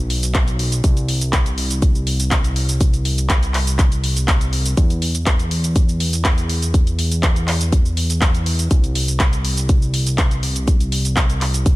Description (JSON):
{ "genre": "progressive house", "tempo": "122 BPM", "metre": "4/4", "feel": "straight", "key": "unclear", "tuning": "A4 = 440 Hz", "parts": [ { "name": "fat analog bass", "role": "bass", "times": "0.0-11.8 s", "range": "B1 to E2", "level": "-20 LUFS", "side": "equal", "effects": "sidechain pumping" }, { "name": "house drum kit", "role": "drums", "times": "0.1-11.8 s", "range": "handclaps, hi-hat, shaker", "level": "-22 LUFS", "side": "equal", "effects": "small room ambience" }, { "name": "electronic kick drum", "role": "drums", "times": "0.3-11.8 s", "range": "none", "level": "-16 LUFS", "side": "equal", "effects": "small room ambience" } ], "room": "little or no reverb", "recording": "none", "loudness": "-15 LUFS", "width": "side -19 dB against mid", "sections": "0.0-11.8 A section", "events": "none", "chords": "none" }